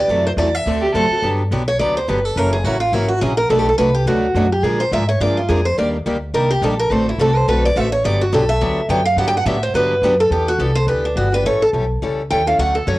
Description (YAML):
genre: acoustic string swing (jazz manouche)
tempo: 211 BPM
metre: 4/4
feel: swing 57% on 8ths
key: G major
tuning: A4 = 440 Hz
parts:
  - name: picked steel-string acoustic guitar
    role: melody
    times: 0.0-13.0 s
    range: D4 to G5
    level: -17 LUFS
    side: right 1 dB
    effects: cassette tape
  - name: picked steel-string acoustic guitar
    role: accompaniment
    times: 0.0-13.0 s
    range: B2 to A4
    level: -24 LUFS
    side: left 3 dB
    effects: cassette tape
  - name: upright bass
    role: bass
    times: 0.0-13.0 s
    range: F#1 to Bb2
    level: -21 LUFS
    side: equal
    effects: none
  - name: picked steel-string acoustic guitar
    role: accompaniment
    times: 0.1-10.1 s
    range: B2 to B4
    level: -23 LUFS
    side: right 2 dB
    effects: cassette tape
  - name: warm violin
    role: second line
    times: 0.8-1.2 s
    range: G4 to A4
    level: -18 LUFS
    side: right 2 dB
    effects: cassette tape
room: moderate studio reverb, RT60 0.6 s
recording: home recording on cassette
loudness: -15 LUFS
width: side -18 dB against mid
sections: 0.0-1.2 A section; 1.2-10.3 B section; 10.3-13.0 B section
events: steel-string acoustic guitar solo 1.2-13.0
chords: 0.1 F#m7b5; 0.7 D9; 1.2 Gmaj7; 2.4 F#7; 3.5 Bm7; 4.6 Bb7; 5.8 Ebmaj7; 6.9 D7; 8.0 Gmaj9; 10.3 Em7; 11.4 A7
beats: | 0.09 0.37 0.66 0.94 | 1.23 1.51 1.79 2.08 | 2.36 2.65 2.93 3.21 | 3.50 3.78 4.07 4.35 | 4.63 4.92 5.20 5.49 | 5.77 6.05 6.34 6.62 | 6.91 7.19 7.47 7.76 | 8.04 8.32 8.61 8.89 | 9.18 9.46 9.74 10.03 | 10.31 10.60 10.88 11.16 | 11.45 11.73 12.02 12.30 | 12.59 12.87